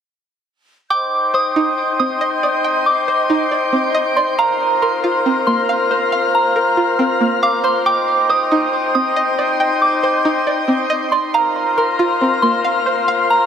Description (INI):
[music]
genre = hip hop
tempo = 138 BPM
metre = 4/4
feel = half-time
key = C minor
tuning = A4 = 440 Hz
[part]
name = soft synth bell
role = melody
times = 0.9-13.5 s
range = Bb5 to Eb6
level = -18 LUFS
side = right 1 dB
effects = chorus, phaser, digital delay
[part]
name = mellow hollow flute section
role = sustained chords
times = 0.9-13.5 s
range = Bb4 to G6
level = -18 LUFS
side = left 2 dB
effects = none
[part]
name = string-like resonator pluck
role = arpeggios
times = 0.9-13.5 s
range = Bb3 to G5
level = -20 LUFS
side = right 2 dB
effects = chorus, digital delay
[part]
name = drifting glass-harmonics texture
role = texture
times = 1.2-13.5 s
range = Eb4 to C6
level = -27 LUFS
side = left 1 dB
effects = chorus, built-in reverb
[sound]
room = wet shimmer reverb, RT60 5.4 s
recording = none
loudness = -14 LUFS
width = side -8 dB against mid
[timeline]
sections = 0.9-13.5 A section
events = none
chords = 0.9 Cmadd9; 4.4 Bbsus2; 7.9 Cmadd9; 11.3 Bbsus2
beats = | 0.91 1.34 1.77 2.21 | 2.64 3.08 3.51 3.95 | 4.38 4.82 5.25 5.69 | 6.12 6.56 6.99 7.43 | 7.86 8.30 8.73 9.17 | 9.60 10.04 10.47 10.90 | 11.34 11.77 12.21 12.64 | 13.08